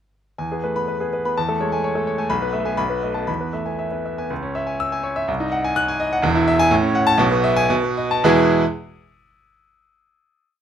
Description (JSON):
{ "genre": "classical, virtuoso piano study", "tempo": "106-130 BPM", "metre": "2/4", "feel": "rubato", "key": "E major", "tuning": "A4 = 440 Hz", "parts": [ { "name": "bright grand piano", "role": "solo", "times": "0.4-8.6 s", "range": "E1 to F#6", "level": "-18 LUFS", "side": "equal", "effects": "none" } ], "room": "light reverb", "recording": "close, detailed microphones, faint mains hum", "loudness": "-18 LUFS", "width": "side -9 dB against mid", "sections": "0.4-4.3 A section; 4.3-8.2 B section; 8.2-9.3 final chord", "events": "slowing down 5.8-8.2", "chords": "0.4 E; 1.4 Amaj7/E; 2.3 E/B; 2.8 B7; 3.3 E; 4.3 C#m; 5.3 G#7/B#; 6.2 E; 6.7 F#m/A; 7.2 E/B; 7.7 B7; 8.2 E" }